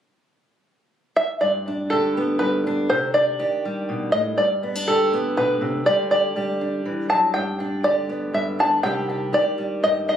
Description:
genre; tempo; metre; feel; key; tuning
folk; 121 BPM; 3/4; straight; G major; A4 = 441 Hz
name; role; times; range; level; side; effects
open-back banjo; melody; 1.2-10.2 s; A4 to A5; -20 LUFS; equal; tape echo
fingerpicked steel-string acoustic guitar; accompaniment; 1.4-10.2 s; G2 to G4; -25 LUFS; equal; none
room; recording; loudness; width
moderate studio reverb, RT60 0.6 s; recorded on a phone in the room, studio ambience, compression; -19 LUFS; side -9 dB against mid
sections
0.0-1.4 A section; 1.4-10.2 B section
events
none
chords
0.0 N.C.; 1.4 G; 2.9 Cmadd9; 4.4 G; 5.9 Dsus4; 7.3 G; 8.8 Cmadd9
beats
0.42 0.92 | 1.41 1.90 2.40 | 2.89 3.39 3.88 | 4.38 4.87 5.37 | 5.86 6.36 6.86 | 7.35 7.84 8.34 | 8.84 9.33 9.82

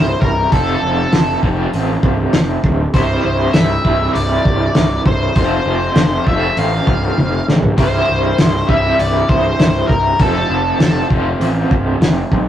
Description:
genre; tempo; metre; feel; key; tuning
psychedelic rock; 99 BPM; 4/4; straight; unclear; A4 = 440 Hz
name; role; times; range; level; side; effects
octave-fuzz lead guitar; melody; 0.0-11.1 s; A4 to F5; -19 LUFS; left 1 dB; wah, distortion
raw garage guitar; riff; 0.0-12.5 s; C2 to F4; -18 LUFS; right 1 dB; overdrive, tremolo
fuzz picked electric bass; bass; 0.0-12.5 s; C1 to B1; -19 LUFS; equal; overdrive
cloth-damped thuddy drum kit; drums; 0.2-12.5 s; hi-hat, kick drum, snare drum, toms; -15 LUFS; equal; none
room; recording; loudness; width
moderate studio reverb, RT60 0.5 s; rough rehearsal-room recording, tube saturation; -12 LUFS; side -11 dB against mid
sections
0.0-12.5 A section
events
drum fill 7.2-7.8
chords
0.0 C; 0.5 F; 2.9 C; 5.4 F; 7.8 C; 10.2 F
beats
| 0.52 1.13 1.73 2.33 | 2.94 3.54 4.15 4.75 | 5.36 5.96 6.57 7.17 | 7.78 8.38 8.99 9.59 | 10.20 10.80 11.41 12.02

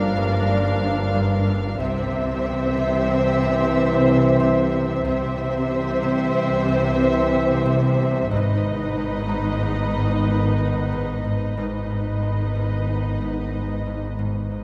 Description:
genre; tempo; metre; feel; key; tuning
cinematic, suspense film score; 92 BPM; 5/4; straight; unclear; A4 = 438 Hz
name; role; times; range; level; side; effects
muted symphonic violin section; melody; 0.0-14.6 s; D#5 to F5; -32 LUFS; equal; none
muted symphonic violin section; second line; 0.0-14.6 s; Bb4 to C5; -32 LUFS; equal; none
muted symphonic viola section; accompaniment; 0.0-14.6 s; C4 to D#4; -32 LUFS; equal; none
dark French horn section; sustained chords; 0.0-14.5 s; D#3 to C4; -29 LUFS; equal; none
concert harp; riff; 0.0-14.6 s; G2 to C4; -30 LUFS; equal; none
muted symphonic cello section; bass; 0.0-14.6 s; G2 to C3; -28 LUFS; equal; none
muted symphonic double bass section; bass; 0.0-14.6 s; G1 to C2; -29 LUFS; equal; none
metallic inharmonic drone; drone; 0.0-14.6 s; G1 to C2; -35 LUFS; equal; chorus, built-in reverb
felt-muted upright piano; texture; 0.0-14.6 s; F4 to C6; -39 LUFS; equal; none
room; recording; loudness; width
wet concert hall reverb, RT60 2.3 s; none; -21 LUFS; mono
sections
0.0-14.6 A section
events
none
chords
0.0 Gm7; 1.8 C; 8.3 G#m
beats
0.49 1.14 | 1.79 2.45 3.10 3.75 4.40 | 5.05 5.71 6.36 7.01 7.66 | 8.32 8.97 9.62 10.27 10.93 | 11.58 12.23 12.88 13.53 14.19

